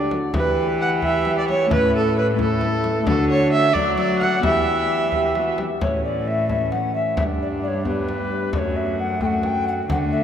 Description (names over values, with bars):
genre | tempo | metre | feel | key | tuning
classical, renaissance-style consort dance | 88 BPM (dotted quarters) | 6/8 | straight | unclear | A4 = 440 Hz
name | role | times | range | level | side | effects
mellow alto recorder | melody | 0.0-10.2 s | A4 to G5 | -25 LUFS | left 2 dB | none
warm viola | second line | 0.0-10.2 s | C#4 to F#5 | -23 LUFS | right 3 dB | none
Celtic harp | accompaniment | 0.0-10.2 s | F#2 to A4 | -28 LUFS | left 4 dB | none
clear trombone | accompaniment | 0.0-10.2 s | E3 to G4 | -28 LUFS | left 1 dB | none
rich cello | bass | 0.0-10.2 s | F#2 to F#3 | -25 LUFS | right 1 dB | none
frame drum | percussion | 0.1-10.1 s | none | -28 LUFS | left 1 dB | none
room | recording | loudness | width
wet cathedral reverb, RT60 5.0 s | in a vast, echoing space | -18 LUFS | side -9 dB against mid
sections
0.0-5.8 A section; 5.8-10.2 B section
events
none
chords
0.3 Em; 1.7 A; 3.1 D; 4.4 Em; 5.8 A; 7.2 G; 8.5 F#m